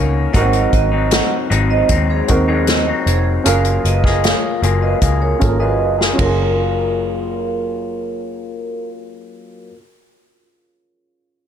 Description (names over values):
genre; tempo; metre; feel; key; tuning
indie pop, bedroom pop; 77 BPM; 4/4; straight; F# major; A4 = 439 Hz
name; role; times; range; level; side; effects
electric guitar through a small old amp; accompaniment; 0.0-9.8 s; G#2 to G#4; -21 LUFS; left 5 dB; wide subtle chorus, warbly pitch drift, low-pass filter
warm upright piano; accompaniment; 0.0-11.5 s; A#3 to A#4; -23 LUFS; right 3 dB; low-pass filter
vintage muted picked electric bass; bass; 0.0-9.7 s; E#1 to D#2; -18 LUFS; equal; none
vibraphone with medium hard mallets; second line; 0.3-8.9 s; G#4 to F#5; -22 LUFS; right 6 dB; analog chorus, slapback echo
unplugged drum kit; drums; 0.3-6.4 s; hi-hat, kick drum, ride cymbal, snare drum; -19 LUFS; equal; none
room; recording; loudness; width
light reverb, small room ambience; none; -14 LUFS; side -9 dB against mid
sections
0.0-6.6 A section; 6.6-9.7 B section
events
filter sweep 0.0-6.6; drum fill 5.8-6.6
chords
0.3 G#7; 3.5 F#maj9